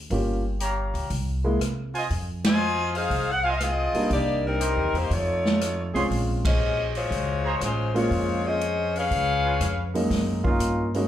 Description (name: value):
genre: jazz, big band swing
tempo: 120 BPM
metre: 4/4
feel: swing 68% on 8ths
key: Bb minor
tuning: A4 = 443 Hz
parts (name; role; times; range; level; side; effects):
- upright bass; bass; 0.0-11.1 s; G1 to C3; -28 LUFS; equal; none
- warm grand piano; accompaniment; 0.1-11.1 s; Gb2 to Ab4; -27 LUFS; right 1 dB; plate reverb, slapback echo
- swinging big-band drum kit; drums; 0.1-11.0 s; hi-hat, kick drum, ride cymbal, rim click, snare drum; -29 LUFS; equal; none
- warm trumpet section; stabs; 0.6-9.6 s; F4 to C6; -30 LUFS; right 1 dB; plate reverb, slapback echo
- clear saxophone section; melody; 2.5-9.9 s; G3 to Ab5; -25 LUFS; left 2 dB; plate reverb, slapback echo
- warm trombone section; second line; 10.4-10.9 s; Bb3 to F4; -25 LUFS; right 1 dB; plate reverb, slapback echo
room: moderate club reverb, RT60 0.7 s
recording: live gig heard through the venue's PA, club reverb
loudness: -22 LUFS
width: side -11 dB against mid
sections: 0.0-10.1 A section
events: band accent 2.4, 6.4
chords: 0.1 Gm7b5; 1.1 C7b13; 2.1 Fm7; 4.1 Cm7; 5.1 F7b13; 6.1 Bbm9; 9.1 Db7; 10.1 Gb6